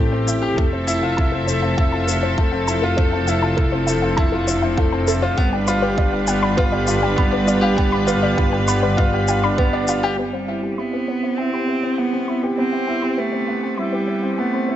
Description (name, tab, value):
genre	piano and strings electronica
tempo	100 BPM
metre	4/4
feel	straight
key	C major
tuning	A4 = 444 Hz
part	rich studio string section	sustained chords	0.0-14.8 s	C3 to E5	-27 LUFS	right 2 dB	sidechain pumping
part	soft round pluck	arpeggios	0.0-14.8 s	A4 to B5	-26 LUFS	left 1 dB	chorus, sidechain pumping, tape echo
part	clear concert grand piano	riff	0.0-14.8 s	A3 to G4	-21 LUFS	left 1 dB	low-pass filter, tape echo
part	dark symphonic double bass section	bass	0.0-10.2 s	F1 to A1	-22 LUFS	equal	sidechain pumping
part	shaker	drums	0.3-10.0 s	none	-28 LUFS	left 6 dB	none
part	electronic kick drum	drums	0.6-9.7 s	none	-19 LUFS	equal	none
part	clear cello	melody	10.2-14.8 s	G3 to C4	-23 LUFS	right 2 dB	tape echo
room	light reverb, small room ambience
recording	nothing above 7.9 kHz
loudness	-17 LUFS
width	side -11 dB against mid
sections	0.0-10.2 A section; 10.2-14.8 B section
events	filter sweep on synth arpeggio sound 0.0-10.2; filter sweep on grand piano 10.2-14.8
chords	0.0 Am7; 0.6 Fmaj7; 5.4 G7; 10.2 Cmaj7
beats	| 0.58 1.18 1.78 2.38 | 2.98 3.58 4.18 4.78 | 5.38 5.98 6.58 7.18 | 7.78 8.38 8.98 9.58 | 10.18 10.78 11.38 11.98 | 12.58 13.18 13.78 14.38